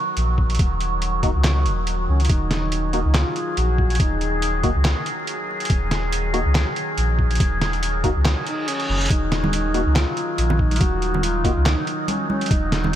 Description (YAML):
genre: deep dubstep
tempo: 141 BPM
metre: 4/4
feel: swing 55% on 16ths, half-time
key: Eb minor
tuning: A4 = 440 Hz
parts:
  - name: overtone-sweeping drone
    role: sustained chords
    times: 0.0-13.0 s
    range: Eb3 to Ab4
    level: -25 LUFS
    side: equal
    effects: chorus, built-in reverb
  - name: soft dub sub bass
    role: bass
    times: 0.2-13.0 s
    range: Eb1 to Db2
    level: -21 LUFS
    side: equal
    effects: none
  - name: trip hop sampler-style drum kit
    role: drums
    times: 0.2-13.0 s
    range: handclaps, hi-hat, snare drum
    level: -25 LUFS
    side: right 1 dB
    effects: none
  - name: electronic kick drum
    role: drums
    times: 0.4-12.6 s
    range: none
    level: -21 LUFS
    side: equal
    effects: none
  - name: percussive organ stab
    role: stabs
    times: 1.2-11.5 s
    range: Bb3 to Gb4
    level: -31 LUFS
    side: left 2 dB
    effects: none
  - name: dark duduk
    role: melody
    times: 2.1-4.6, 8.5-13.0 s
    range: Db4 to Gb4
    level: -29 LUFS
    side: left 1 dB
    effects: dub echo
  - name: reverse cymbal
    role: sound effects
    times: 8.4-9.1 s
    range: none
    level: -31 LUFS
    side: right 2 dB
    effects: none
  - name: congas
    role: percussion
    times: 9.4-12.9 s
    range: none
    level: -26 LUFS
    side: right 2 dB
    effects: none
room: little or no reverb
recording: vinyl crackle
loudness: -18 LUFS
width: side -11 dB against mid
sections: 0.0-13.0 A section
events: reverse cymbal 8.4-9.1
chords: 0.0 Ebm